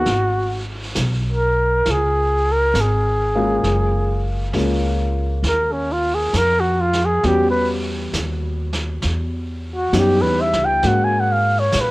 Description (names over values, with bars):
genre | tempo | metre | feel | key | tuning
jazz ballad | 67 BPM | 4/4 | swing 67% on 8ths | unclear | A4 = 441 Hz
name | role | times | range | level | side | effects
breathy trumpet | melody | 0.0-11.9 s | Db4 to Ab5 | -18 LUFS | equal | none
warm baby grand piano | accompaniment | 0.0-11.9 s | G3 to Gb4 | -24 LUFS | left 1 dB | none
upright bass | bass | 0.0-11.9 s | Gb1 to Bb2 | -21 LUFS | equal | transformer saturation
vintage brush drum kit | drums | 0.1-11.9 s | brushed snare drum, hi-hat, snare drum | -28 LUFS | right 1 dB | none
room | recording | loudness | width
light reverb | worn, warbling old tape, cassette tape, warbly pitch drift | -16 LUFS | side -20 dB against mid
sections
0.0-11.9 A section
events
trumpet solo 0.0-11.9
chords
0.1 Abm; 1.9 Db; 3.6 Gbmaj9; 7.2 Dbm9b5; 10.8 Ab9sus4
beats
| 0.07 0.96 1.85 2.75 | 3.64 4.54 5.44 6.33 | 7.23 8.13 9.03 9.94 | 10.84 11.74